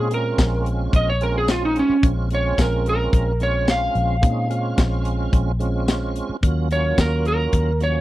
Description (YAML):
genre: straight-eighth soul blues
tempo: 109 BPM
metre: 4/4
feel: straight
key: Bb minor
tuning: A4 = 442 Hz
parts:
  - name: electric slide guitar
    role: melody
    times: 0.0-8.0 s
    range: Db4 to F5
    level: -22 LUFS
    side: right 1 dB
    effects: none
  - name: tonewheel organ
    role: accompaniment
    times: 0.0-8.0 s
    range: F3 to F4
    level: -27 LUFS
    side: right 4 dB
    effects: slow rotary speaker, overdrive, chorus vibrato
  - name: vintage muted fingered electric bass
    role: bass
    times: 0.0-8.0 s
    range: Bb1 to Bb2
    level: -22 LUFS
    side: equal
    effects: none
  - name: tight funk drum kit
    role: drums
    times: 0.1-7.9 s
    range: hi-hat, kick drum, snare drum, tambourine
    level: -18 LUFS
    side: left 1 dB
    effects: none
room: small room ambience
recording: dry, close 1970s-style studio recording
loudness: -18 LUFS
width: side -16 dB against mid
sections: 0.0-8.0 A section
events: electric slide guitar solo 0.0-8.0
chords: 0.0 Bbm9; 6.4 Ebm9